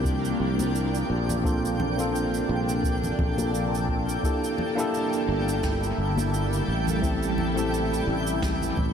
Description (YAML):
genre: sunset chillout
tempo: 86 BPM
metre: 4/4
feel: swing 55% on 16ths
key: G dorian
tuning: A4 = 440 Hz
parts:
  - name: tine electric piano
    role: accompaniment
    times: 0.0-8.9 s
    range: A3 to A4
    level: -29 LUFS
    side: equal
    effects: auto-pan, dub echo
  - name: shimmering ambient pad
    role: sustained chords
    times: 0.0-8.9 s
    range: C3 to A4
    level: -29 LUFS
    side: left 1 dB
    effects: chorus, built-in reverb, phaser
  - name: sustaining fretless electric bass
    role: bass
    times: 0.0-8.9 s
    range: G1 to C2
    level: -28 LUFS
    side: equal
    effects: tube saturation
  - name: electronic kick drum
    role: drums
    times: 0.0-8.9 s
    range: none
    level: -29 LUFS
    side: equal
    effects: none
  - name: twinkling granular texture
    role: texture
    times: 0.0-8.9 s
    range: G5 to G6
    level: -35 LUFS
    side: right 1 dB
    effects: built-in reverb
  - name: cabasa and snare drum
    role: drums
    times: 0.1-8.7 s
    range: none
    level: -38 LUFS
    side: right 5 dB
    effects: dub echo
  - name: congas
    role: percussion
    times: 0.6-8.9 s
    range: none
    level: -35 LUFS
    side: left 1 dB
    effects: none
room: moderate echo chamber reverb, RT60 1.9 s, small room reverb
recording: echo-heavy mix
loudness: -23 LUFS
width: side -8 dB against mid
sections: 0.0-8.9 A section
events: none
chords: 0.0 C9sus4; 1.4 Bbmaj9; 4.2 Gm69; 6.7 Am7